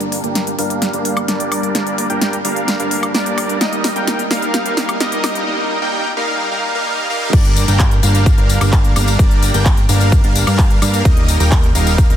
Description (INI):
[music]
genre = EDM, festival progressive house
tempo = 129 BPM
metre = 4/4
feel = straight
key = G minor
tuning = A4 = 440 Hz
[part]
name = supersaw chords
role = riff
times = 0.0-12.2 s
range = G3 to G5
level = -18 LUFS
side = right 1 dB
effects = sidechain pumping, low-pass filter, ping-pong delay
[part]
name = fat analog bass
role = bass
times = 0.0-12.2 s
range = Eb1 to G2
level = -19 LUFS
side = equal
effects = sidechain pumping, high-pass filter
[part]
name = big-room dance drum kit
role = drums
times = 0.0-12.2 s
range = crash cymbal, handclaps, hi-hat, snare drum, tambourine, woodblock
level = -21 LUFS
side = left 1 dB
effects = overdrive
[part]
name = electronic kick drum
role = drums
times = 7.3-12.1 s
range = none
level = -12 LUFS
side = equal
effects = overdrive
[sound]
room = light reverb, digital ambience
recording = dense, heavily limited modern master, high-pass filter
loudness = -13 LUFS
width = side -10 dB against mid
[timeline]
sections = 0.0-7.3 A section; 7.3-12.2 B section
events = build-up 0.0-7.3; drum fill 0.0-5.5; filter sweep on supersaw synth 0.0-7.3; drop 7.3-12.2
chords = 0.0 Gm; 3.6 Eb; 7.3 Gm; 11.1 Eb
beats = 0.35 0.82 1.28 | 1.75 2.21 2.68 3.15 | 3.61 4.08 4.54 5.01 | 5.47 5.94 6.40 6.87 | 7.33 7.80 8.26 8.73 | 9.19 9.66 10.12 10.59 | 11.05 11.52 11.98